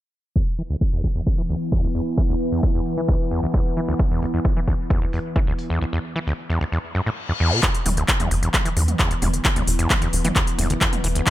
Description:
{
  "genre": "driving peak-time techno",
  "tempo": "132 BPM",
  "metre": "4/4",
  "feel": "straight",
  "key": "unclear",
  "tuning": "A4 = 440 Hz",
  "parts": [
    { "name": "overdriven acid bass", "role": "riff", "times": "0.4-11.2 s", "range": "D2 to E3", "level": "-25 LUFS", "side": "equal", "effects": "sidechain pumping, dub echo" },
    { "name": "analog drone", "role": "drone", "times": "1.1-11.3 s", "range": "E3 to B3", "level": "-28 LUFS", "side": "equal", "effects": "chorus, sidechain pumping" },
    { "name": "electronic kick drum", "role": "drums", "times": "0.4-11.3 s", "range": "none", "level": "-21 LUFS", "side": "equal", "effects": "none" },
    { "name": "techno drum kit", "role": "drums", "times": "0.6-11.3 s", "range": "handclaps, hi-hat, toms", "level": "-22 LUFS", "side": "equal", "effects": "sidechain pumping on hats, low-pass filter on hats, low-pass filter on snare, sidechain pumping on toms, low-pass filter on toms, low-pass filter on room" },
    { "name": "reverse cymbal", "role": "sound effects", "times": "7.1-7.6 s", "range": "none", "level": "-27 LUFS", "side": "left 6 dB", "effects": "none" },
    { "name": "tight sequencer bass", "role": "bass", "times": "7.9-11.2 s", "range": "E1 to E2", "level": "-22 LUFS", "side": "equal", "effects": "sidechain pumping" }
  ],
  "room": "little or no reverb",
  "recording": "low-pass filter",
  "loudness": "-19 LUFS",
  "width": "side -14 dB against mid",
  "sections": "0.4-7.6 A section; 7.6-11.3 B section",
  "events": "filter sweep on drum 0.4-7.6; filter sweep on acid bass 0.4-7.6, 7.6-11.3; filter sweep 0.4-7.6; reverse cymbal 7.1-7.6",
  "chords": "0.4 E5"
}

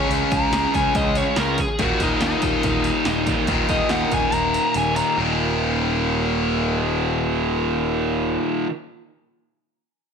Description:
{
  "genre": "hard rock",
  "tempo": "142 BPM",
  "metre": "4/4",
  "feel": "straight",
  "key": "unclear",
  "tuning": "A4 = 440 Hz",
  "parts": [
    { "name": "biting lead guitar", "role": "melody", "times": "0.0-5.2 s", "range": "Eb4 to Bb5", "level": "-24 LUFS", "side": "left 2 dB", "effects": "overdrive, tape echo" },
    { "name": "distorted electric guitar", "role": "riff", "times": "0.0-8.7 s", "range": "Eb2 to Db4", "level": "-24 LUFS", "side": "left 12 dB", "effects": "overdrive" },
    { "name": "tight distorted guitar", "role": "riff", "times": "0.0-8.7 s", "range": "Eb2 to Db4", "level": "-24 LUFS", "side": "right 13 dB", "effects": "distortion" },
    { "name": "fuzz picked electric bass", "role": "bass", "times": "0.1-8.4 s", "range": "Eb1 to Eb2", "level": "-26 LUFS", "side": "equal", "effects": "overdrive" },
    { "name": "punchy analog drum machine", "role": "drums", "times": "0.1-5.1 s", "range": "hi-hat, kick drum, snare drum", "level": "-26 LUFS", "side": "right 1 dB", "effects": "none" }
  ],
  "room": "moderate large studio reverb, RT60 1.2 s, digital ambience",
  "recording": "none",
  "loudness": "-18 LUFS",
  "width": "side -6 dB against mid",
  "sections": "0.0-5.2 A section; 5.2-8.5 B section",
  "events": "lead electric guitar solo 0.0-5.2; kick and snare drop out 4.3-5.2",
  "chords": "0.0 Db5; 1.8 Eb5"
}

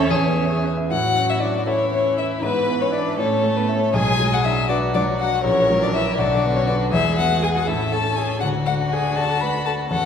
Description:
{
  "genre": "quick classical-period movement for piano quintet",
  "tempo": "80 BPM (dotted quarters)",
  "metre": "6/8",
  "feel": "rubato",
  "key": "A major",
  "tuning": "A4 = 440 Hz",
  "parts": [
    { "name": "warm violin", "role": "melody", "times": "0.0-10.1 s", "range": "B4 to B5", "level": "-22 LUFS", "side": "left 4 dB", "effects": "none" },
    { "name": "dark cello", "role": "second line", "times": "0.0-10.1 s", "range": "B3 to B4", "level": "-28 LUFS", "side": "right 4 dB", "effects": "none" },
    { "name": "warm violin", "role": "second line", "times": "0.0-10.1 s", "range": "E4 to B4", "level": "-26 LUFS", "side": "left 3 dB", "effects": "none" },
    { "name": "clear concert grand piano", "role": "accompaniment", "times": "0.0-10.1 s", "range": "A#1 to E5", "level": "-22 LUFS", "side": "equal", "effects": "none" },
    { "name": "rich viola", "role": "accompaniment", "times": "0.0-10.1 s", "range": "D3 to C#5", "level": "-30 LUFS", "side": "right 3 dB", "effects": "none" }
  ],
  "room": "wet recital hall reverb, RT60 1.6 s",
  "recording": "recorded in a church or concert hall",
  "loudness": "-18 LUFS",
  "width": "side -7 dB against mid",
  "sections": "0.9-10.1 A section",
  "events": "none",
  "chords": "0.1 E; 0.9 A; 2.4 E/G#; 3.2 A; 3.9 Bm; 5.4 F#/A#; 6.2 Bm; 6.9 E; 7.7 A; 8.4 D"
}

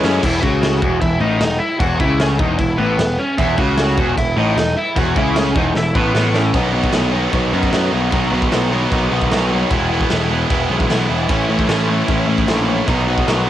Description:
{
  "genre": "punk rock",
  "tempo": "152 BPM",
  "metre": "4/4",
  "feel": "straight",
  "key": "E major",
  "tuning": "A4 = 439 Hz",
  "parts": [
    { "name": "lead guitar through a small cranked amp", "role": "melody", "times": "0.0-6.5 s", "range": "B3 to F#5", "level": "-20 LUFS", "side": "equal", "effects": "overdrive, cassette tape" },
    { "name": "crunchy overdriven guitar", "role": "riff", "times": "0.0-0.2, 3.4-13.5 s", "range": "E2 to E4", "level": "-22 LUFS", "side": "right 8 dB", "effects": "cassette tape" },
    { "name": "overdriven electric guitar", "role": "riff", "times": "0.0-13.5 s", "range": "E2 to E4", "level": "-23 LUFS", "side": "equal", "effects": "cassette tape" },
    { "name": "overdriven semi-hollow guitar", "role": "riff", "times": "0.0-13.5 s", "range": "E2 to C#4", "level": "-22 LUFS", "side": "left 6 dB", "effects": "cassette tape" },
    { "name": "growling picked electric bass", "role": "bass", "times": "0.0-13.5 s", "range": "E1 to F#2", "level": "-20 LUFS", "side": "equal", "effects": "overdrive" },
    { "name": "raw garage drum kit", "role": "drums", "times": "0.0-13.4 s", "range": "crash cymbal, kick drum, snare drum", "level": "-21 LUFS", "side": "equal", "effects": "none" }
  ],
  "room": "studio reverb",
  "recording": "home recording on cassette",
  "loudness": "-14 LUFS",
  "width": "side -12 dB against mid",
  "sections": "0.2-6.5 A section; 6.5-13.5 B section",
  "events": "drum fill 0.0, 5.7-6.5",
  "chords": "0.2 E5; 6.5 B; 9.7 E; 11.3 A; 12.9 B"
}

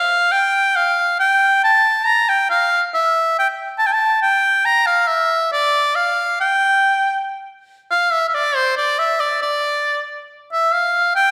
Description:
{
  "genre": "medieval dance",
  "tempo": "138 BPM",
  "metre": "3/4",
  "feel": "straight",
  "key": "G dorian",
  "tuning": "A4 = 440 Hz",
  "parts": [
    { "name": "edgy shawm", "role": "solo", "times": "0.0-11.3 s", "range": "C5 to Bb5", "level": "-17 LUFS", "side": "equal", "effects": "none" }
  ],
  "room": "wet scoring stage reverb, RT60 1.5 s",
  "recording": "recorded in a church or concert hall",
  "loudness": "-17 LUFS",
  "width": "mono",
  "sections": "0.0-7.7 A section; 7.7-11.3 B section",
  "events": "none",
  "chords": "none"
}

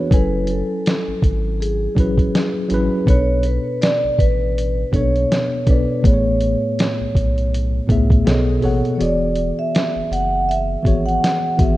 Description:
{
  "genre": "lo-fi hip hop",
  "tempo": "81 BPM",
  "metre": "4/4",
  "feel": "swing 57% on 16ths",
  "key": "B dorian",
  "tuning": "A4 = 440 Hz",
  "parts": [
    { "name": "vibraphone with soft mallets", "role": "melody", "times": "0.0-11.8 s", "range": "G#4 to F#5", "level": "-22 LUFS", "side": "right 1 dB", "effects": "none" },
    { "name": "mellow tine electric piano", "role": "accompaniment", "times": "0.0-11.8 s", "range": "A2 to G#5", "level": "-21 LUFS", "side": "left 1 dB", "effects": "medium stereo tremolo" },
    { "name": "soft dub sub bass", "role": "bass", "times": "0.1-11.8 s", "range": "E1 to C#2", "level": "-21 LUFS", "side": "equal", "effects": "none" },
    { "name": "lo-fi sampler-style drum kit", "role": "drums", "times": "0.1-11.8 s", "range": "hi-hat, kick drum, snare drum", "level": "-18 LUFS", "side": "equal", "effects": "vintage 12-bit sampler grit" }
  ],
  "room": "light reverb",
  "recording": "rough home demo mix, cassette tape",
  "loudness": "-16 LUFS",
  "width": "side -16 dB against mid",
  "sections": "0.0-11.8 A section",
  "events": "break 9.0-10.5",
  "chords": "0.1 F#m7; 3.1 Bm7; 6.0 Amaj7; 8.3 B13; 9.0 E7"
}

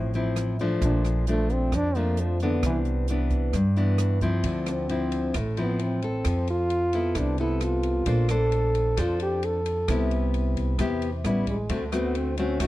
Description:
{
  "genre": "bossa nova",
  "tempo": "132 BPM",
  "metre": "4/4",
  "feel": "straight",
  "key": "C major",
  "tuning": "A4 = 440 Hz",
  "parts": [
    { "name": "nylon-string guitar", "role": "accompaniment", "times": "0.0-12.7 s", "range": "F2 to C5", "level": "-28 LUFS", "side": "left 2 dB", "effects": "none" },
    { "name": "upright bass", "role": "bass", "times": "0.0-12.7 s", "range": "A1 to G2", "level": "-27 LUFS", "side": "right 1 dB", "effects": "none" },
    { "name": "open jazz drum kit", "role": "drums", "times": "0.1-12.7 s", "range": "hi-hat, kick drum, ride cymbal, rim click", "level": "-34 LUFS", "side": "right 1 dB", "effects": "none" },
    { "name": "mellow trombone", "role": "melody", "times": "0.8-12.7 s", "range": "D3 to A4", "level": "-28 LUFS", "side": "right 1 dB", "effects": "none" }
  ],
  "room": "small room ambience",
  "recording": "dry, close 1970s-style studio recording",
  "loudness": "-23 LUFS",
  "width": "side -16 dB against mid",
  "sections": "0.0-4.4 A section; 4.4-12.7 A section",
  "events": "trombone solo 0.0-12.7",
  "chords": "0.0 Dm9; 0.8 Bbmaj7; 2.6 Cmaj9; 4.4 Dm9; 6.3 Fmaj7#11; 8.1 Bbmaj9; 9.9 Cmaj7; 11.2 A7; 11.7 D7"
}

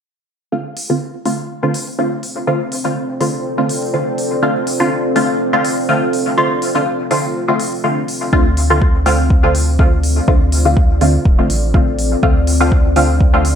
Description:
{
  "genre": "dub techno",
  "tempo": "123 BPM",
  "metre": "4/4",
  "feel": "swing 54% on 16ths",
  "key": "D minor",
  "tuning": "A4 = 440 Hz",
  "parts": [
    { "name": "deep dark ambient pad", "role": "sustained chords", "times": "1.9-13.6 s", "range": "C4 to D5", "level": "-21 LUFS", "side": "equal", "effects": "chorus, built-in reverb, sidechain pumping" },
    { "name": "filtered dub chord stab", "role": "stabs", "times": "0.5-13.4 s", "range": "D3 to F4", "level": "-17 LUFS", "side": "equal", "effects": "chorus, phaser, sidechain pumping, dub echo" },
    { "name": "electronic hi-hat", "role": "drums", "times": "0.8-13.6 s", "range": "none", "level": "-26 LUFS", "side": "equal", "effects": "none" },
    { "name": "soft dub sub bass", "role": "bass", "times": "8.3-13.6 s", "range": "D1 to D2", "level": "-16 LUFS", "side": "equal", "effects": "sidechain pumping" },
    { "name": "electronic kick drum", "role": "drums", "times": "8.3-13.3 s", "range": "none", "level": "-13 LUFS", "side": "equal", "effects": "none" }
  ],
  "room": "moderate plate reverb, RT60 1.0 s, digital ambience",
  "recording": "dreamy mix soaked in reverb",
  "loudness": "-13 LUFS",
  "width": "side -8 dB against mid",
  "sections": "0.5-8.3 A section; 8.3-13.6 B section",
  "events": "filter sweep on synth stab 0.5-8.3",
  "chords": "0.5 Dm7"
}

